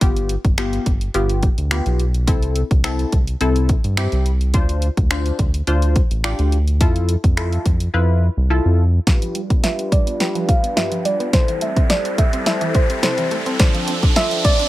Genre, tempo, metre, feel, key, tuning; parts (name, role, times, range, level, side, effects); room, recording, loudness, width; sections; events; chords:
dance-pop; 106 BPM; 4/4; straight; C major; A4 = 437 Hz
funky polysynth comp; accompaniment; 0.0-14.5 s; B3 to C5; -24 LUFS; left 2 dB; chorus, sidechain pumping, low-pass filter
round analog bass; bass; 0.0-9.0 s; G1 to G2; -18 LUFS; equal; sidechain pumping
house drum kit; drums; 0.0-14.7 s; finger snaps, hi-hat, kick drum, snare drum; -18 LUFS; equal
soft supersaw; sustained chords; 9.1-14.7 s; F3 to B4; -27 LUFS; equal; sidechain pumping, low-pass filter
mallet-like synth pluck; arpeggios; 9.1-14.7 s; G2 to D4; -29 LUFS; right 3 dB; chorus, sidechain pumping, low-pass filter, digital delay
riser; sound effects; 10.6-14.7 s; -26 LUFS; right 1 dB
soft round pluck; melody; 9.6-14.7 s; C5 to F5; -22 LUFS; right 1 dB; chorus, low-pass filter
little or no reverb; -16 LUFS; side -16 dB against mid
0.0-9.1 A section; 9.1-14.7 B section
silent gap 7.9-9.1; build-up 9.1-14.7; drum fill 9.1-14.7; filter sweep 9.1-14.7; riser 10.6-14.7
0.0 G7; 2.3 C6; 4.5 Dm7; 6.8 Fmaj7; 9.1 G7; 11.3 C6; 13.6 Dm7